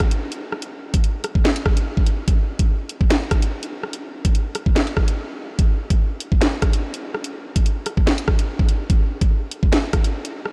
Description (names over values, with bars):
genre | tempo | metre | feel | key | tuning
hip hop | 145 BPM | 4/4 | half-time | none | none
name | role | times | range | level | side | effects
drill drum kit | drums | 0.0-10.5 s | handclaps, hi-hat, kick drum, rim click, snare drum | -21 LUFS | equal | none
room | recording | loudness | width
moderate huge ambient reverb, RT60 7.3 s | dreamy mix soaked in reverb | -21 LUFS | mono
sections
0.0-10.5 A section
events
break 5.2-5.6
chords
none